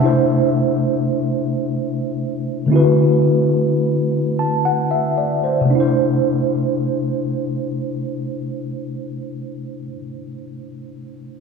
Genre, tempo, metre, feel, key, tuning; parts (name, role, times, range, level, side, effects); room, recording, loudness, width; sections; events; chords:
R&B; 37-46 BPM (dotted quarters); 6/8; straight; C major; A4 = 439 Hz
mellow tine electric piano; accompaniment; 0.0-11.4 s; C3 to A5; -17 LUFS; equal; medium stereo tremolo
wet church reverb, RT60 3.0 s; dreamy mix soaked in reverb, small room reverb; -16 LUFS; side -5 dB against mid
0.0-5.7 A section; 5.7-9.0 B section
slowing down 0.0-5.7
0.0 C69; 2.7 D13; 5.7 C69